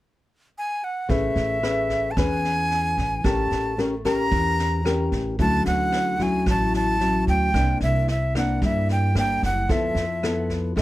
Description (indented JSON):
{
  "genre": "bossa nova",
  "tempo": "112 BPM",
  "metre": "4/4",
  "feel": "straight",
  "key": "unclear",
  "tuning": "A4 = 440 Hz",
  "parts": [
    { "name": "breathy bright jazz flute", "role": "melody", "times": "0.6-10.8 s", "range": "E5 to Bb5", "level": "-24 LUFS", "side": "right 1 dB", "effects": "none" },
    { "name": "nylon-string guitar", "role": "accompaniment", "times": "1.1-10.8 s", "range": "A2 to B4", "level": "-25 LUFS", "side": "left 2 dB", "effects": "none" },
    { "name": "upright bass", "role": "bass", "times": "1.1-10.8 s", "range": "F#1 to G2", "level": "-25 LUFS", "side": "right 1 dB", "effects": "none" },
    { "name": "jazz brush drum kit", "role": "drums", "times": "1.1-10.8 s", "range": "kick drum, rim click, snare drum", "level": "-31 LUFS", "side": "equal", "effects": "none" }
  ],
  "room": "moderate small room reverb, RT60 0.5 s",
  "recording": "none",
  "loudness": "-20 LUFS",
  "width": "side -16 dB against mid",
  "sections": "0.0-1.1 A section; 1.1-10.8 B section",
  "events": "none",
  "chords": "0.0 N.C.; 1.1 Amaj9; 3.2 A7b9; 5.4 Dmaj9; 7.5 C9; 9.7 Fmaj7#11"
}